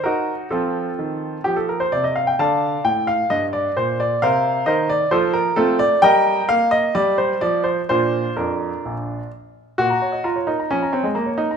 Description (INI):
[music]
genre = classical-period piano sonatina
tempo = 130 BPM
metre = 4/4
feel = straight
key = Bb major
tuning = A4 = 440 Hz
[part]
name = bright baby grand piano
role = solo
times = 0.0-11.6 s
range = Bb1 to Bb5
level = -17 LUFS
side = equal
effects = none
[sound]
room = moderate recital hall reverb, RT60 1.5 s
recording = minimal, uncompressed stereo recording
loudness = -17 LUFS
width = side -6 dB against mid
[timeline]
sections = 0.0-9.8 A section; 9.8-11.6 B section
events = none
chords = 0.0 Ebm; 0.5 F; 2.4 Dm; 3.3 Gm; 4.2 Cm7; 5.1 F; 6.0 Eb/G; 7.0 N.C.; 7.9 Bb; 9.8 Bbm